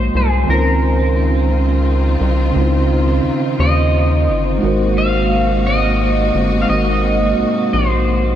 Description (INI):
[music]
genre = R&B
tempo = 58 BPM (dotted quarters)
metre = 6/8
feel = straight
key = Db major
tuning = A4 = 437 Hz
[part]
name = electric guitar at the edge of break-up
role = melody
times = 0.0-8.4 s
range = Ab4 to F5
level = -20 LUFS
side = right 1 dB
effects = analog chorus, tape echo
[part]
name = electric guitar at the edge of break-up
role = second line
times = 0.0-8.4 s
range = Ab2 to Eb4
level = -22 LUFS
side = right 4 dB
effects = analog chorus
[part]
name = mellow tine electric piano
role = accompaniment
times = 0.0-8.4 s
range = Db3 to Eb5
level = -20 LUFS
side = equal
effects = medium stereo tremolo
[part]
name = rubbery square bass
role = bass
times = 0.0-8.4 s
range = G1 to Eb2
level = -16 LUFS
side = equal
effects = none
[part]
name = muted studio string section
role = sustained chords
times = 0.5-8.4 s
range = C3 to Gb4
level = -24 LUFS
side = left 1 dB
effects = none
[sound]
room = wet cathedral reverb, RT60 6.1 s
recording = dreamy mix soaked in reverb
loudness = -13 LUFS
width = side -10 dB against mid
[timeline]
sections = 0.0-8.4 A section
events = none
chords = 0.5 Dbmaj9; 4.6 Ab9